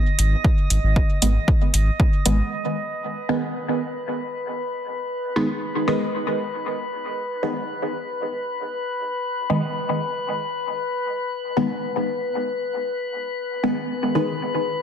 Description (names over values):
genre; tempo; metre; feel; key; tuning
dub techno; 116 BPM; 4/4; straight; G# minor; A4 = 441 Hz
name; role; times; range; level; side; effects
drifting glass-harmonics texture; texture; 0.0-14.8 s; B4 to D#5; -28 LUFS; left 2 dB; chorus, built-in reverb, sidechain pumping
soft dub sub bass; bass; 0.2-2.4 s; G#1; -18 LUFS; equal; tube saturation, sidechain pumping
electronic hi-hat; drums; 0.2-2.4 s; none; -22 LUFS; equal; none
electronic kick drum; drums; 0.4-2.1 s; none; -18 LUFS; equal; overdrive
filtered dub chord stab; stabs; 1.2-14.3 s; D#3 to B3; -24 LUFS; equal; phaser, sidechain pumping, dub echo
room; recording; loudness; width
moderate lush hall reverb, RT60 1.8 s, digital ambience; dense, heavily limited modern master; -21 LUFS; side -8 dB against mid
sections
0.0-2.5 A section; 2.5-14.8 B section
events
none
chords
0.0 G#5; 2.5 N.C.